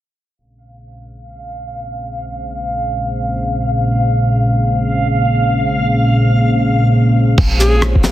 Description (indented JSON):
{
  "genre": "future garage",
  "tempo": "free time",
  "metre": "none",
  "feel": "none",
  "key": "Bb minor",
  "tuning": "A4 = 441 Hz",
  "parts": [
    { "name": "dark analog pad", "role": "sustained chords", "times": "0.4-8.1 s", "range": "Bb2 to Db5", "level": "-15 LUFS", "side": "equal", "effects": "chorus, sidechain pumping" },
    { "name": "backwards swelling texture", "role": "texture", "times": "1.4-8.1 s", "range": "F5 to Ab5", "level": "-21 LUFS", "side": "equal", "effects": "built-in reverb" },
    { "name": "soft 808-style bass", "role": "bass", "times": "7.4-8.1 s", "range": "Bb1", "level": "-15 LUFS", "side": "equal", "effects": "sidechain pumping" },
    { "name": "electronic kick drum", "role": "drums", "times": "7.4-8.0 s", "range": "none", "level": "-13 LUFS", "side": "equal", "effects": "small room ambience" },
    { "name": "lo-fi sampler-style drum kit", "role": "drums", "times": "7.4-8.1 s", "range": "bongos, crash cymbal, rim click, shaker", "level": "-18 LUFS", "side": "equal", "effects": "small room ambience, soft clipping on snare" },
    { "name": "clear alto saxophone", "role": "melody", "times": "7.6-7.8 s", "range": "Ab4", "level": "-18 LUFS", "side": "left 1 dB", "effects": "none" }
  ],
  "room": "light reverb",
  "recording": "dense, heavily limited modern master, low-pass filter",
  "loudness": "-12 LUFS",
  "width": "side -14 dB against mid",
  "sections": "0.4-7.4 A section",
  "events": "filter sweep on analog synth pad 0.4-7.4; filter sweep 0.4-7.4",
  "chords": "0.4 Bbm7",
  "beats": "free time"
}